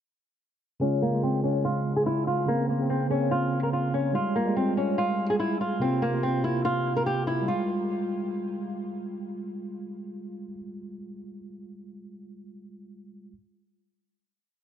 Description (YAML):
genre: hip hop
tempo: 144 BPM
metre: 4/4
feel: half-time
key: F harmonic minor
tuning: A4 = 442 Hz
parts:
  - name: flamenco guitar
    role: melody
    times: 0.8-8.7 s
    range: Bb3 to Bb4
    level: -27 LUFS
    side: left 1 dB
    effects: low-pass filter, ping-pong delay
  - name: mellow tine electric piano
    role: accompaniment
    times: 0.8-13.3 s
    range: C3 to F4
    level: -29 LUFS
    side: right 1 dB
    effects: fast stereo tremolo, low-pass filter
room: light reverb, small room ambience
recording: none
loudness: -24 LUFS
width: side -9 dB against mid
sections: 0.8-7.5 breakdown; 7.5-10.8 final chord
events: filter sweep 0.8-7.5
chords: 0.8 Db; 2.5 Bbmadd9; 4.1 Fmadd9; 5.8 C7sus4; 7.5 Fmadd9